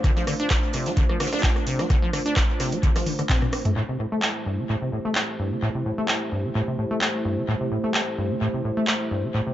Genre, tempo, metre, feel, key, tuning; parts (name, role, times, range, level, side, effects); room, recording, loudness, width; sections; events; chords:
acid house; 129 BPM; 4/4; swing 54% on 16ths; A minor; A4 = 440 Hz
dark analog pad; sustained chords; 0.0-9.5 s; A3 to C5; -29 LUFS; right 1 dB; chorus, sidechain pumping
acid bass, saw; riff; 0.0-9.5 s; G2 to D4; -26 LUFS; equal; lush chorus, dub echo
booming analog drum machine; drums; 0.0-9.0 s; handclaps, hi-hat, rim click, toms; -27 LUFS; equal; overdrive, dub echo
electronic kick drum; drums; 0.0-3.4 s; -22 LUFS; equal; overdrive
jazz brush drum kit; drums; 0.0-3.6 s; hi-hat, snare drum; -36 LUFS; right 2 dB; sidechain pumping on hats, high-pass filter on hats, high-pass filter on snare, high-pass filter on room
light reverb; echo-heavy mix, nothing above 7.6 kHz; -22 LUFS; side -12 dB against mid
0.0-3.8 A section; 3.8-9.5 B section
filter sweep on acid bass 0.0-3.8; drum fill 3.1-3.8
0.0 Dm7; 3.8 Am7